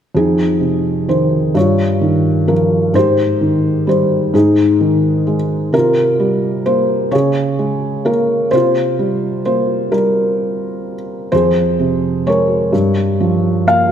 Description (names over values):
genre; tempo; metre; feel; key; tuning
folk; 43 BPM (dotted quarters); 6/8; straight; F minor; A4 = 440 Hz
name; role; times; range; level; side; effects
felt-muted upright piano; melody; 0.1-13.9 s; F2 to F5; -12 LUFS; equal; none
room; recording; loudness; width
moderate concert hall reverb, RT60 2.2 s; none; -12 LUFS; side -9 dB against mid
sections
0.1-13.9 A section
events
none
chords
0.1 Fm7; 1.6 Eb9/G; 3.0 Abmaj7; 4.3 Ab5; 5.7 C7sus4; 7.1 Bbm7/Db; 8.5 C7sus4; 11.3 Fm; 12.7 Gm7b5